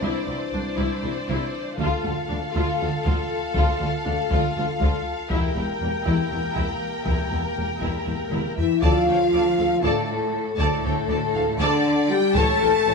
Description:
cinematic, epic orchestral film score; 238 BPM (eighths); 7/8; straight; D harmonic minor from 8.8 s; A4 = 440 Hz
rich symphonic violin section; melody; 0.0-12.9 s; D5 to A5; -31 LUFS; left 3 dB
rich symphonic violin section; second line; 0.0-12.9 s; A4 to A5; -29 LUFS; left 2 dB
rich symphonic viola section; accompaniment; 0.0-12.9 s; Bb3 to D5; -30 LUFS; left 1 dB
clear French horn section; sustained chords; 0.0-12.9 s; E3 to A4; -25 LUFS; left 3 dB
rich symphonic double bass section; bass; 0.0-12.9 s; E1 to D2; -29 LUFS; right 2 dB
warm symphonic cello section; bass; 0.0-12.9 s; C2 to A3; -29 LUFS; equal
taiko ensemble; drums; 1.8-12.8 s; -26 LUFS; left 1 dB
warm tuba; bass; 8.8-12.9 s; A1 to D2; -32 LUFS; right 6 dB
timpani; percussion; 12.4-12.9 s; A2; -32 LUFS; left 2 dB
wet recital hall reverb, RT60 1.7 s; -20 LUFS; side -4 dB against mid
0.0-8.8 A section; 8.8-12.9 B section
build-up 0.0-8.8; drum fill 8.1-8.8
0.0 Cadd9; 1.8 Dm; 5.3 Edim; 8.8 Dm; 12.4 A
| 0.02 0.27 0.53 0.78 1.03 1.28 1.53 | 1.78 2.04 2.29 2.54 2.79 3.04 3.29 | 3.55 3.80 4.05 4.30 4.55 4.80 5.06 | 5.31 5.56 5.81 6.06 6.32 6.57 6.82 | 7.07 7.32 7.57 7.82 8.08 8.33 8.58 | 8.83 9.08 9.33 9.59 9.84 10.09 10.34 | 10.59 10.84 11.09 11.35 11.60 11.85 12.10 | 12.35 12.60 12.85

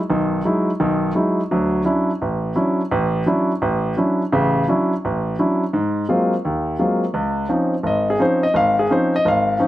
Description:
jazz; 170 BPM; 4/4; swing 65% on 8ths; A4 = 440 Hz
warm concert grand piano; solo; 0.1-9.7 s; Ab1 to F5; -17 LUFS; equal; slapback echo
light reverb; recorded outdoors, with no room sound; -17 LUFS; side -14 dB against mid
0.0-7.1 A section; 7.1-9.7 B section
0.0 Emaj9; 1.5 Dmaj9; 5.7 G#13; 7.1 Dbmaj9
| 0.10 0.46 0.81 1.16 | 1.51 1.86 2.21 2.57 | 2.92 3.27 3.62 3.97 | 4.33 4.68 5.03 5.38 | 5.73 6.08 6.44 6.79 | 7.14 7.49 7.84 8.20 | 8.55 8.90 9.25 9.61

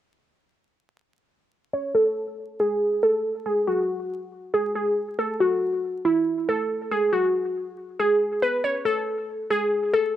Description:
hip hop; 139 BPM; 4/4; half-time; A4 = 440 Hz
glassy wavetable pluck; melody; 1.7-10.2 s; E4 to C#5; -22 LUFS; equal; chorus, low-pass filter, cassette tape
moderate booth ambience, RT60 0.2 s; home recording on cassette, vinyl crackle; -22 LUFS; side -11 dB against mid
1.7-10.2 A section
filter sweep on synth pluck 1.7-10.2
| 1.73 2.17 2.60 3.03 | 3.46 3.89 4.32 4.76 | 5.19 5.62 6.05 6.48 | 6.91 7.34 7.78 8.21 | 8.64 9.07 9.50 9.94

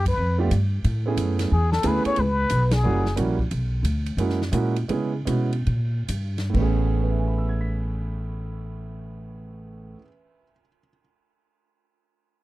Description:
jazz, small-group swing and bop; 126-180 BPM; 4/4; swing 65% on 8ths; A major; A4 = 440 Hz
trumpet with plunger mute; melody; 0.0-3.2 s; G#4 to C#5; -25 LUFS; left 3 dB
upright bass; bass; 0.0-9.9 s; F#1 to C#3; -23 LUFS; equal
swinging big-band drum kit; drums; 0.1-6.7 s; crash cymbal, hi-hat, kick drum, ride cymbal, snare drum; -33 LUFS; equal
warm concert grand piano; accompaniment; 0.4-11.0 s; A2 to B6; -27 LUFS; right 5 dB
little or no reverb; dry, close 1970s-style studio recording; -21 LUFS; side -17 dB against mid
0.0-3.5 A section; 3.5-6.5 B section; 6.5-10.4 C section
band accent 2.7; slowing down 3.5-6.5
0.0 G9; 0.8 Amaj7; 2.2 G#madd11 (rootless); 2.8 F#7b9; 3.5 Bm; 4.2 F#7; 4.9 C#m7; 5.7 Gm; 6.5 Amaj7
0.17 0.50 | 0.83 1.17 1.50 1.83 | 2.17 2.50 2.83 3.17 | 3.50 3.83 4.17 4.52 | 4.89 5.26 5.66 6.09 | 6.55 7.02 7.50 7.98 | 8.45 8.93 9.41 9.88

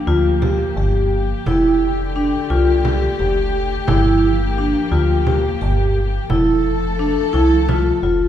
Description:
contemporary instrumental, chamber music in an uneven meter; 173 BPM (eighths); 7/8; straight; G dorian; A4 = 440 Hz
dark studio string section; sustained chords; 0.0-8.3 s; D3 to A4; -23 LUFS; left 4 dB
vibraphone with medium hard mallets; arpeggios; 0.1-8.3 s; D4 to G4; -18 LUFS; right 1 dB
metallic FM bass; bass; 0.1-8.3 s; F1 to D2; -19 LUFS; equal
frame drum; percussion; 0.4-8.2 s; -25 LUFS; right 3 dB
moderate recital hall reverb, RT60 1.7 s; heard from further back in the room; -15 LUFS; side -10 dB against mid
0.0-8.3 A section
0.0 Gm7; 1.5 F69; 3.9 Gm7; 6.3 Fmaj7
0.08 0.42 0.77 1.12 | 1.46 1.81 2.15 2.50 2.85 3.19 3.54 | 3.88 4.23 4.58 4.92 5.27 5.61 5.96 | 6.30 6.65 7.00 7.34 7.69 8.04

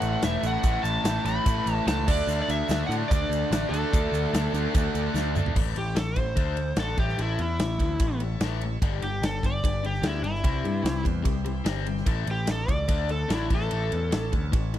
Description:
classic rock; 147 BPM; 4/4; straight; A mixolydian; A4 = 443 Hz
overdriven slide guitar; melody; 0.0-14.3 s; E4 to B5; -31 LUFS; equal
bright tonewheel organ; sustained chords; 0.0-14.8 s; E3 to D5; -42 LUFS; right 1 dB
overdriven electric guitar; riff; 0.0-5.4 s; A2 to D4; -32 LUFS; left 1 dB
raw garage guitar; riff; 0.0-14.8 s; G2 to D4; -33 LUFS; left 14 dB; overdrive
raw garage guitar; riff; 0.0-5.6 s; A2 to D4; -33 LUFS; right 12 dB; overdrive
growling picked electric bass; bass; 0.0-14.8 s; E1 to A2; -29 LUFS; equal; overdrive
big rock drum kit; drums; 0.0-14.8 s; crash cymbal, kick drum, ride cymbal, snare drum, toms; -28 LUFS; equal
egg shaker; percussion; 0.0-5.5 s; -45 LUFS; right 15 dB
studio reverb; dry, close 1970s-style studio recording; -23 LUFS; side -12 dB against mid
0.0-5.6 A section; 5.6-14.8 B section
drum fill 5.2-5.6; electric slide guitar solo 5.6-14.8
0.0 A; 2.1 D; 5.6 A; 6.4 D; 7.0 A; 8.8 G; 10.5 C; 12.1 A; 12.9 D; 13.5 A
0.24 | 0.65 1.06 1.47 1.88 | 2.29 2.70 3.11 3.52 | 3.93 4.34 4.75 5.16 | 5.56 5.97 6.38 6.79 | 7.20 7.60 8.01 8.42 | 8.82 9.23 9.64 10.04 | 10.45 10.86 11.27 11.67 | 12.08 12.49 12.90 13.31 | 13.71 14.12 14.53

